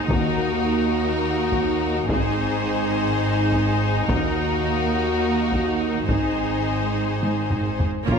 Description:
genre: cinematic, epic orchestral film score.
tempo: 210 BPM (eighths).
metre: 7/8.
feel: straight.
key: unclear.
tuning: A4 = 440 Hz.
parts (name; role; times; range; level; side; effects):
clear studio violin section; melody; 0.0-8.2 s; Bb4 to C5; -31 LUFS; left 4 dB; none.
warm symphonic violin section; second line; 0.0-8.2 s; Gb4 to Db5; -29 LUFS; left 5 dB; none.
clear symphonic viola section; accompaniment; 0.0-8.2 s; Bb3 to F4; -27 LUFS; right 1 dB; none.
rich symphonic cello section; bass; 0.0-8.2 s; Eb2 to Bb2; -27 LUFS; right 4 dB; none.
rich symphonic double bass section; bass; 0.0-8.2 s; Ab1 to Eb2; -28 LUFS; right 4 dB; none.
mellow French horn section; sustained chords; 0.1-8.2 s; Bb3 to Gb4; -28 LUFS; left 5 dB; none.
taiko ensemble; drums; 0.1-8.2 s; none; -26 LUFS; equal; none.
timpani; percussion; 0.1-0.9, 4.1-4.9, 8.1-8.2 s; Bb2 to Eb3; -31 LUFS; left 1 dB; none.
bright trombone section; sustained chords; 8.1-8.2 s; none; barely audible; none; none.
rich symphonic string section; sustained chords; 8.1-8.2 s; Bb3 to Db5; -30 LUFS; left 2 dB; none.
clear trumpet; stabs; 8.1-8.2 s; Bb4; -39 LUFS; right 7 dB; none.
warm tuba; bass; 8.1-8.2 s; Bb1; -26 LUFS; right 4 dB; none.
impact; sound effects; 8.1-8.2 s; none; -29 LUFS; right 1 dB; none.
room: moderate scoring stage reverb, RT60 2.0 s.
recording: none.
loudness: -20 LUFS.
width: side -6 dB against mid.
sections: 0.0-8.1 A section.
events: drum fill 7.2-8.1.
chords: 0.1 Ebm; 2.1 Ab; 4.1 Ebm; 6.1 Ab.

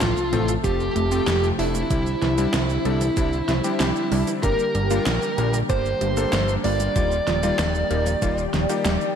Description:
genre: synthwave.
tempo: 95 BPM.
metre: 4/4.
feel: straight.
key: F major.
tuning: A4 = 440 Hz.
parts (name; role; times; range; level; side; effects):
bluesy overdriven lead guitar; melody; 0.0-9.2 s; E4 to D5; -26 LUFS; right 1 dB; distortion, ping-pong delay.
FM electric piano with soft pad layer; second line; 0.0-9.2 s; E4 to D5; -32 LUFS; equal; none.
analog string pad; sustained chords; 0.0-9.2 s; C3 to A4; -29 LUFS; equal; ensemble chorus, sidechain pumping.
analog pluck; arpeggios; 0.0-9.0 s; D3 to F4; -31 LUFS; right 4 dB; none.
fat analog bass; bass; 0.0-9.0 s; Eb1 to C2; -25 LUFS; equal; none.
pop drum kit; drums; 0.0-9.1 s; handclaps, hi-hat, shaker, snare drum; -28 LUFS; right 1 dB; overdrive, gated reverb.
sub drop; sound effects; 0.0-1.9 s; none; -38 LUFS; right 1 dB; none.
bright electric grand piano; stabs; 0.3-9.1 s; F3 to Bb4; -29 LUFS; left 6 dB; none.
electronic kick drum; drums; 0.6-8.3 s; none; -25 LUFS; equal; overdrive.
room: light reverb, digital ambience.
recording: none.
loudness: -19 LUFS.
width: side -8 dB against mid.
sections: 0.0-9.2 A section.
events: impact 0.0-1.9.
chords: 0.0 F; 1.9 Cadd9; 4.4 Gm; 7.0 Ebadd9.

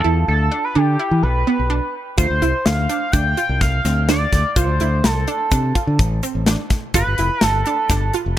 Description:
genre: progressive instrumental, band music in an uneven meter.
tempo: 126 BPM.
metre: 5/4.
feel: straight.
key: D dorian.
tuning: A4 = 440 Hz.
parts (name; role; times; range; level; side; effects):
sync lead; melody; 0.0-8.1 s; G4 to G5; -21 LUFS; right 1 dB; chorus, tape echo.
analog pluck; arpeggios; 0.0-8.4 s; B3 to F4; -24 LUFS; right 6 dB; chorus.
modern bright fingered electric bass; bass; 0.0-8.4 s; F1 to E3; -18 LUFS; equal; none.
tight metal drum kit; drums; 2.2-8.2 s; hi-hat, kick drum, snare drum; -20 LUFS; left 1 dB; none.
egg shaker; percussion; 2.2-8.1 s; none; -32 LUFS; left 9 dB; tape echo.
room: light reverb.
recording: echo-heavy mix.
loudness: -16 LUFS.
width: side -12 dB against mid.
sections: 0.0-8.4 A section.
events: none.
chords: 0.0 Em7; 2.2 Dm7; 6.9 G7.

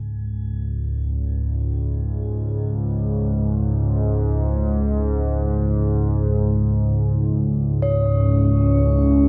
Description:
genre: dark ambient drone.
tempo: free time.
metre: none.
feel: none.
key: C# minor.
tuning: A4 = 445 Hz.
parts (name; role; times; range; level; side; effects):
analog drone; drone; 0.0-9.3 s; C#2 to G#2; -21 LUFS; equal; chorus.
quartz singing bowl; texture; 0.0-9.3 s; G#4 to C#5; -27 LUFS; equal; shimmer reverb.
deep dark ambient pad; sustained chords; 8.2-9.3 s; C#4 to E5; -23 LUFS; equal; chorus, built-in reverb.
room: wet cathedral reverb, RT60 5.5 s.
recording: in a vast, echoing space.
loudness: -21 LUFS.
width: mono.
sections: 0.0-9.3 A section.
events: fade-in on synth drone 0.0-9.3; fade-in on singing bowl 0.0-9.3.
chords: 0.0 C#m.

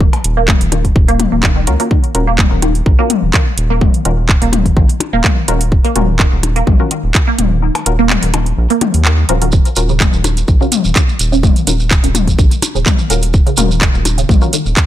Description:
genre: minimal techno.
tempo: 126 BPM.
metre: 4/4.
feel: swing 53% on 16ths.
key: Eb minor.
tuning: A4 = 441 Hz.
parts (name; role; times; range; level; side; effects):
resonant blip pluck; riff; 0.0-14.6 s; Db3 to Bb3; -19 LUFS; right 2 dB; phaser, lush chorus, sidechain pumping, ping-pong delay.
round analog bass; bass; 0.0-14.7 s; Eb1 to Eb2; -15 LUFS; equal; sidechain pumping.
electronic kick drum; drums; 0.0-14.9 s; none; -12 LUFS; equal; none.
house drum kit; drums; 0.1-14.9 s; handclaps, hi-hat; -17 LUFS; right 2 dB; none.
electronic percussion blips and toms; percussion; 0.1-14.4 s; none; -20 LUFS; left 7 dB; ping-pong delay.
wavetable chord stab; stabs; 1.7-14.5 s; Db4 to Bb4; -23 LUFS; left 3 dB; ping-pong delay.
shekere; percussion; 9.5-14.9 s; none; -22 LUFS; right 4 dB; none.
room: digital ambience.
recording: none.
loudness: -10 LUFS.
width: side -12 dB against mid.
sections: 0.0-14.9 A section.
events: kick drops out 7.6-9.5.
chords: 0.0 Eb7(no3).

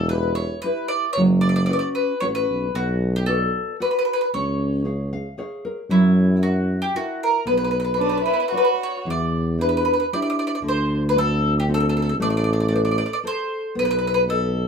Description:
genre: italian folk, Italian serenade.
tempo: 114 BPM.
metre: 3/4.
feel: straight.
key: B minor, E minor from 9.1 s.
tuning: A4 = 440 Hz.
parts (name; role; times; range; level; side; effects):
bowl-back mandolin; melody; 0.0-14.7 s; E4 to D5; -23 LUFS; equal; none.
nylon-string guitar; accompaniment; 0.0-14.7 s; D3 to E#5; -24 LUFS; equal; none.
mellow tuba; bass; 0.0-14.7 s; E1 to F#2; -22 LUFS; equal; none.
dark violin; second line; 8.0-9.0 s; D4 to F#4; -26 LUFS; right 5 dB; none.
room: wet studio reverb, RT60 0.6 s.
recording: minimal, uncompressed stereo recording.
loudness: -19 LUFS.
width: side -6 dB against mid.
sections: 0.0-9.1 A section; 9.1-14.7 B section.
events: nylon-string guitar fill 4.8-5.9.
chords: 0.0 Em; 1.2 F#sus4; 2.7 Bm; 4.3 C#; 5.9 F#7; 7.5 Bmadd9; 9.1 Em7; 10.6 D7; 12.2 Amadd9; 13.8 B7.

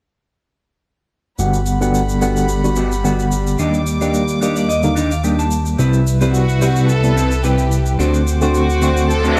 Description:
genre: nu-disco, nu disco.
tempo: 109 BPM.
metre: 4/4.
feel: swing 54% on 16ths.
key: G major.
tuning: A4 = 440 Hz.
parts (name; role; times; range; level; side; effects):
tine electric piano; accompaniment; 1.4-9.4 s; C3 to F#5; -20 LUFS; equal; medium tremolo.
warm chamber string section; sustained chords; 1.4-9.4 s; G3 to D6; -29 LUFS; equal; low-pass filter.
semi-hollow electric guitar; riff; 1.4-9.4 s; B3 to A5; -25 LUFS; equal; subtle chorus, low-pass filter.
fat analog bass; bass; 1.4-9.4 s; G1 to Eb2; -21 LUFS; equal; none.
shaker; drums; 1.4-9.4 s; none; -33 LUFS; equal; studio reverb.
dark studio violin section; melody; 6.3-9.4 s; F#4 to A4; -24 LUFS; equal; tape echo.
reverse cymbal; sound effects; 9.2-9.4 s; none; -22 LUFS; equal; none.
room: light reverb, studio ambience.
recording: dry, gritty hardware recording.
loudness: -16 LUFS.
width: mono.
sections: 1.4-9.4 A section.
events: filter sweep on clean electric guitar 1.4-9.4; filter sweep on string section 1.4-9.4; clean electric guitar fill 4.1-5.8; reverse cymbal 9.2.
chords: 1.4 Gmaj7; 3.6 Ebmaj7; 5.8 Cmaj7; 8.0 D7.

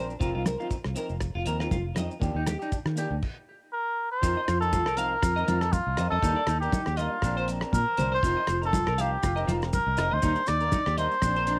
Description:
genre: highlife guitar band.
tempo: 120 BPM.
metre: 4/4.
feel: swing 55% on 16ths.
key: F mixolydian.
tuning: A4 = 441 Hz.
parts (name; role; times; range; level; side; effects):
electric guitar at the edge of break-up; accompaniment; 0.0-11.6 s; F3 to Bb4; -39 LUFS; equal; cassette tape.
clean electric guitar; arpeggios; 0.0-11.6 s; D4 to F5; -36 LUFS; equal; subtle chorus, cassette tape, tape echo.
fingered electric bass; bass; 0.0-11.6 s; F1 to Eb3; -32 LUFS; equal; none.
maracas; percussion; 0.1-11.6 s; none; -47 LUFS; equal; none.
damped 70s drum kit; drums; 0.2-11.6 s; crash cymbal, hi-hat, kick drum, rim click; -34 LUFS; equal; cassette tape.
congas; percussion; 0.2-11.5 s; none; -35 LUFS; equal; none.
trumpet with cup mute; melody; 3.7-11.6 s; F4 to D5; -29 LUFS; equal; cassette tape.
room: small room ambience.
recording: home recording on cassette.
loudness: -27 LUFS.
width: mono.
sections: 0.0-4.2 A section; 4.2-11.6 B section.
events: stop 3.2-4.2.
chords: 0.2 F7sus4; 2.2 Ebmaj7; 3.2 N.C.; 4.2 F7sus4; 6.2 Ebmaj7; 7.2 Bbadd9; 8.2 F7sus4; 10.2 Ebmaj7.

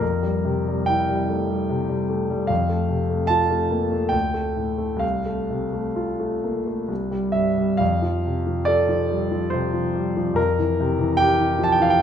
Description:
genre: classical, romantic nocturne for solo piano.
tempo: 63-76 BPM.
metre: 3/4.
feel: rubato.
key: F major.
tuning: A4 = 437 Hz.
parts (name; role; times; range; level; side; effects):
clear concert grand piano; solo; 0.0-12.0 s; C2 to A5; -20 LUFS; equal; none.
room: moderate recital hall reverb, RT60 1.7 s.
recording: minimal, uncompressed stereo recording.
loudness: -20 LUFS.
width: side -8 dB against mid.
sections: 0.0-12.0 A section.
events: none.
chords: 0.0 C7/F; 2.5 F; 4.1 D5; 5.0 F/C; 6.9 C; 7.8 F; 10.4 C7/F.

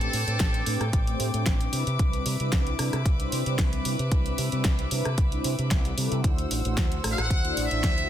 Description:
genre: nu-disco, nu disco.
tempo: 113 BPM.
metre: 4/4.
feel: swing 53% on 16ths.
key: unclear.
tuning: A4 = 441 Hz.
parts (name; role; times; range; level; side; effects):
muted trumpet section; melody; 0.0-0.9, 7.1-8.1 s; A4 to F#5; -30 LUFS; left 1 dB; analog delay.
mellow synth brass; accompaniment; 0.0-8.1 s; G3 to D5; -32 LUFS; right 1 dB; chorus, sidechain pumping, analog delay.
rich chamber string section; sustained chords; 0.0-8.1 s; C4 to E6; -35 LUFS; left 1 dB; sidechain pumping.
fingered electric bass with an envelope filter; bass; 0.0-8.0 s; A1 to C3; -29 LUFS; equal; none.
pop drum kit; drums; 0.0-8.1 s; hi-hat, rim click, snare drum; -31 LUFS; equal; none.
electronic kick drum; drums; 0.4-7.9 s; none; -25 LUFS; equal; none.
room: little or no reverb.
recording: dense, heavily limited modern master.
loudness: -23 LUFS.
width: side -11 dB against mid.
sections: 0.0-8.1 A section.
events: none.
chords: 0.0 Am11; 1.7 Cmaj9; 6.2 D9.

